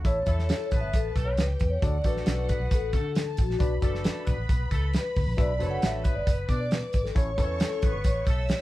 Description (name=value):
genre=uptempo 1960s-style soul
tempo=135 BPM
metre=4/4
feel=straight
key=unclear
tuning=A4 = 440 Hz
part: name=warm symphonic violin section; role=second line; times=0.0-8.6 s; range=F#4 to E6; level=-42 LUFS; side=left 1 dB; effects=none
part: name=barky tine electric piano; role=accompaniment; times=0.0-8.0 s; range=C#4 to E5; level=-34 LUFS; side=left 1 dB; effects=overdrive
part: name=vintage muted fingered electric bass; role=bass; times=0.0-8.5 s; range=F#1 to D3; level=-29 LUFS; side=equal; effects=none
part: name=warm soul drum kit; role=drums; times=0.0-8.6 s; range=hi-hat, kick drum, snare drum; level=-26 LUFS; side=equal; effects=none
part: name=vibraphone with soft mallets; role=melody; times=0.1-8.6 s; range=F#4 to F#5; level=-31 LUFS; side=left 2 dB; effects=none
part: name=clear horn section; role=second line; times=0.3-8.4 s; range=A3 to D5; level=-38 LUFS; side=equal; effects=none
room=light reverb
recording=band playing live in one room, vinyl crackle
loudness=-24 LUFS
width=side -16 dB against mid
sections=0.0-8.6 A section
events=vibraphone solo 0.0-8.6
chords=0.0 A; 1.8 D; 3.6 Bm; 7.2 A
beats=| 0.05 0.49 0.94 1.38 | 1.82 2.27 2.71 3.16 | 3.60 4.05 4.49 4.94 | 5.38 5.83 6.27 6.72 | 7.16 7.61 8.05 8.50